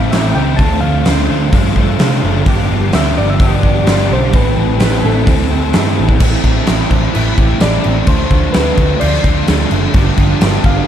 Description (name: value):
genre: rock, shoegaze and dream pop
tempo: 128 BPM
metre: 4/4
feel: straight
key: A minor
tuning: A4 = 441 Hz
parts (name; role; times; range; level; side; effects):
- soft struck synth lead; melody; 0.0-10.9 s; A4 to A5; -21 LUFS; left 2 dB; chorus, slapback echo
- ensemble organ-string; sustained chords; 0.0-6.2 s; C4 to E6; -24 LUFS; left 1 dB; phaser, ensemble chorus
- twangy electric guitar; arpeggios; 0.0-10.9 s; G3 to C5; -26 LUFS; right 10 dB; analog chorus, slapback echo
- overdriven electric guitar; riff; 0.0-10.9 s; G2 to A4; -20 LUFS; left 12 dB; analog chorus
- overdriven semi-hollow guitar; riff; 0.0-10.9 s; G2 to E4; -19 LUFS; right 11 dB; reverse reverb
- vintage muted picked electric bass; bass; 0.0-10.8 s; F#1 to C3; -16 LUFS; equal; none
- big rock drum kit; drums; 0.1-10.8 s; crash cymbal, hi-hat, kick drum, snare drum; -14 LUFS; equal; none
room: studio reverb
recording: dark, warm production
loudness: -10 LUFS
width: side -10 dB against mid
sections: 0.0-6.2 A section; 6.2-10.9 B section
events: none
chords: 0.0 Am11; 0.6 Dm9; 2.5 G7sus4; 4.3 Am11; 8.1 Dm7; 9.9 G5